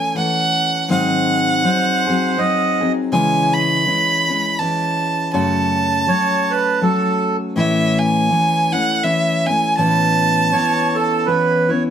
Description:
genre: acoustic folk duo or small band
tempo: 81 BPM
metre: 3/4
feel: swing 58% on 8ths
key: A major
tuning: A4 = 440 Hz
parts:
  - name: warm fiddle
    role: melody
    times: 0.0-11.2 s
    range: E5 to B5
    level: -18 LUFS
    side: right 3 dB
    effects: none
  - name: picked steel-string acoustic guitar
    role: accompaniment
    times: 0.0-11.9 s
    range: F#2 to A4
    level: -19 LUFS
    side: left 2 dB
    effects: none
  - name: accordion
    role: second line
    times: 1.6-11.8 s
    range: A4 to D#5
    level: -18 LUFS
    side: right 4 dB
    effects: none
room: moderate studio reverb, RT60 0.9 s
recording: none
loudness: -15 LUFS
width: side -8 dB against mid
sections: 0.0-11.9 A section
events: none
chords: 0.0 A; 0.9 G#7; 3.1 C#m; 5.3 F#m; 7.6 A; 9.8 Aadd9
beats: 0.15 | 0.89 1.64 2.38 | 3.12 3.86 4.60 | 5.34 6.08 6.82 | 7.56 8.30 9.04 | 9.79 10.53 11.27

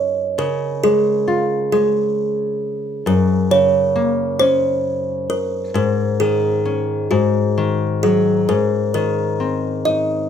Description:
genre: children's music, lullaby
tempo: 44 BPM (dotted quarters)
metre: 6/8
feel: straight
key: unclear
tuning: A4 = 444 Hz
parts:
  - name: kalimba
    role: melody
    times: 0.0-10.3 s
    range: Gb4 to Eb5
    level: -18 LUFS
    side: right 2 dB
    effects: none
  - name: nylon-string guitar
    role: accompaniment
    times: 0.0-10.3 s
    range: Gb2 to F4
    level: -19 LUFS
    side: left 4 dB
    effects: none
room: moderate large studio reverb, RT60 0.9 s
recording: band playing live in one room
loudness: -16 LUFS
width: side -8 dB against mid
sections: 0.0-10.3 A section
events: none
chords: 0.4 Db; 3.1 Gb; 5.8 Absus4; 7.1 Ab5; 8.5 Ab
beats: | 0.39 1.73 | 3.07 4.41 | 5.76 7.12 | 8.50 9.87

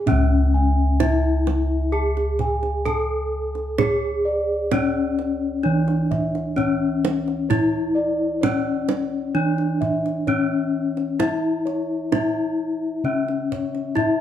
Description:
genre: Javanese gamelan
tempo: 65 BPM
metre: 4/4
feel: straight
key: C# pelog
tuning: A4 = 440 Hz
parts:
  - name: gamelan-type bronze metallophone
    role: melody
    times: 0.0-14.2 s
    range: C#4 to A4-20c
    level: -22 LUFS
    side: left 3 dB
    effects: none
  - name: gamelan-type bossed gongs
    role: bass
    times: 0.0-14.2 s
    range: C#2 to G#4-30c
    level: -24 LUFS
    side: equal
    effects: none
  - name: gamelan-type bossed gongs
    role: arpeggios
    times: 0.1-14.2 s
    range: C#5 to A5-20c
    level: -29 LUFS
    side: equal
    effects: none
  - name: kendang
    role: percussion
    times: 0.1-14.2 s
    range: none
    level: -26 LUFS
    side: right 6 dB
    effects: none
room: moderate large studio reverb, RT60 1.0 s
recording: band playing live in one room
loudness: -19 LUFS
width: side -10 dB against mid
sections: 0.1-14.2 A section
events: none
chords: none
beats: | 0.08 1.00 1.93 2.86 | 3.78 4.71 5.63 6.56 | 7.49 8.41 9.34 10.27 | 11.19 12.12 13.04 13.97

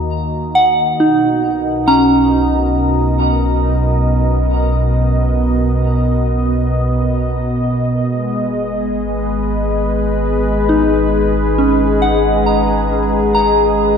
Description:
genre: ambient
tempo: 68 BPM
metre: 4/4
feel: straight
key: B major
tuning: A4 = 440 Hz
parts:
  - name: warm analog pad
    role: sustained chords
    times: 0.0-14.0 s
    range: B2 to D#5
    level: -16 LUFS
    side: equal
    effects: lush chorus
  - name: soft synth bell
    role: arpeggios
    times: 0.0-14.0 s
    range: C#4 to A#5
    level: -15 LUFS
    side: right 1 dB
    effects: chorus, diffuse ambient delay
  - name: round analog bass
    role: bass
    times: 0.0-14.0 s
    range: G#1 to D#2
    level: -19 LUFS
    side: equal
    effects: none
room: wet lush hall reverb, RT60 2.7 s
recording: dark, warm production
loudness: -13 LUFS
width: side -7 dB against mid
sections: 0.0-14.0 A section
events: fade-in on analog synth pad 0.0-14.0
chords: 0.0 D#m; 1.0 Bmaj7; 8.0 G#m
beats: 0.11 | 0.99 1.87 2.75 3.63 | 4.52 5.40 6.28 7.16 | 8.05 8.93 9.81 10.69 | 11.58 12.46 13.34

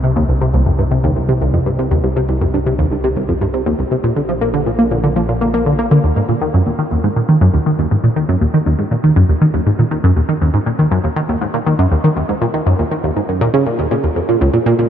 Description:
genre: ambient, sequencer-driven space music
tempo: 120 BPM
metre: 4/4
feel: straight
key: Eb minor from 6.0 s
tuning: A4 = 440 Hz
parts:
  - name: tight sequenced synth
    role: riff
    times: 0.0-14.9 s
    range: C2 to Bb3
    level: -13 LUFS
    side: equal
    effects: chorus, phaser, tape echo
  - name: fat analog bass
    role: bass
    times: 0.0-6.0 s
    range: Bb1 to C2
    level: -20 LUFS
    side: equal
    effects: none
room: moderate huge ambient reverb, RT60 9.2 s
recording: dark, warm production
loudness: -13 LUFS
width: side -9 dB against mid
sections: 0.0-6.0 A section; 6.0-14.9 B section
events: none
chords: 0.0 N.C.; 4.0 Bb; 6.0 Ebm; 14.0 N.C.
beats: | 0.04 0.54 1.04 1.54 | 2.04 2.54 3.04 3.54 | 4.04 4.54 5.04 5.54 | 6.04 6.54 7.04 7.54 | 8.04 8.54 9.04 9.54 | 10.04 10.54 11.04 11.54 | 12.04 12.54 13.04 13.54 | 14.04 14.54

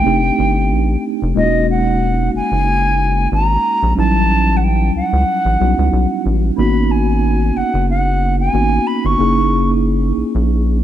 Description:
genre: R&B, neo-soul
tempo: 92 BPM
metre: 4/4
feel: swing 55% on 16ths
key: unclear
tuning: A4 = 439 Hz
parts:
  - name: silver concert flute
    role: melody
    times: 0.0-9.7 s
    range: D#5 to C#6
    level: -19 LUFS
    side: equal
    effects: none
  - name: mellow tine electric piano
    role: accompaniment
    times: 0.0-10.8 s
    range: F#3 to G#4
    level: -18 LUFS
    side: right 1 dB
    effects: medium stereo tremolo
  - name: rubbery square bass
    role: bass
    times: 0.0-10.8 s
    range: E1 to C#2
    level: -16 LUFS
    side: equal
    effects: none
room: light reverb, small room ambience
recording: dark, warm production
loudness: -13 LUFS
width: side -11 dB against mid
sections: 0.0-10.8 A section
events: none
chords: 0.0 F9; 1.4 Emaj9#11; 4.0 A7#11; 6.6 G#m7; 9.2 F#7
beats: 0.05 0.70 | 1.35 2.01 2.66 3.31 | 3.96 4.61 5.27 5.92 | 6.57 7.22 7.88 8.53 | 9.18 9.83 10.48

